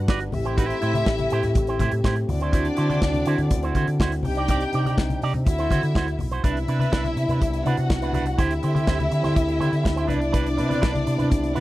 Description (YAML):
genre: disco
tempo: 123 BPM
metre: 4/4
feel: straight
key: unclear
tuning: A4 = 439 Hz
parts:
  - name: warm studio violin section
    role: second line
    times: 0.0-11.6 s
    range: D4 to G5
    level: -28 LUFS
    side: left 1 dB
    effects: none
  - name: dark French horn section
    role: sustained chords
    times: 0.0-11.6 s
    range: C3 to B4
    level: -29 LUFS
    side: left 2 dB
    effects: none
  - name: overdriven fingered electric bass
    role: bass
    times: 0.0-11.6 s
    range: G1 to D3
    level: -25 LUFS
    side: equal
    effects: none
  - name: electric guitar with an envelope filter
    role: accompaniment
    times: 0.1-11.6 s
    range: D4 to D5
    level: -28 LUFS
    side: right 5 dB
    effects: none
  - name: modern studio drum kit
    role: drums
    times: 0.1-11.6 s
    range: hi-hat, kick drum, snare drum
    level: -24 LUFS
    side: equal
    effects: none
  - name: congas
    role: percussion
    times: 0.1-11.6 s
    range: none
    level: -32 LUFS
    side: left 3 dB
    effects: none
room: little or no reverb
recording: none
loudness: -20 LUFS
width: side -16 dB against mid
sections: 0.0-6.4 A section; 6.4-11.6 B section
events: none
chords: 0.3 Am7; 2.3 D9; 4.2 Cmadd9; 5.5 D9; 6.4 Cmaj9; 8.4 D9sus4; 10.1 Cmaj9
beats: 0.09 | 0.58 1.06 1.55 2.04 | 2.53 3.02 3.50 3.99 | 4.48 4.97 5.46 5.95 | 6.43 6.92 7.41 7.90 | 8.39 8.88 9.37 9.85 | 10.34 10.83 11.32